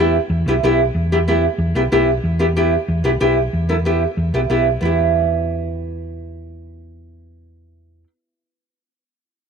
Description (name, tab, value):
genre	latin, cumbia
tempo	186 BPM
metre	4/4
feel	straight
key	E minor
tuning	A4 = 444 Hz
part	nylon-string guitar	accompaniment	0.0-8.1 s	B3 to A4	-17 LUFS	right 1 dB	none
part	hollow-body short-scale fingered electric bass	bass	0.0-8.0 s	B1 to E2	-20 LUFS	equal	none
room	moderate plate reverb, RT60 2.8 s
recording	lossy compression artefacts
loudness	-15 LUFS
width	side -6 dB against mid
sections	0.0-4.8 A section; 4.8-7.4 B section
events	none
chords	0.0 Em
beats	0.31 0.63 | 0.95 1.27 1.60 1.92 | 2.24 2.56 2.88 3.21 | 3.53 3.85 4.18 4.50 | 4.82 5.14 5.47 5.79 | 6.11 6.44 6.76 7.08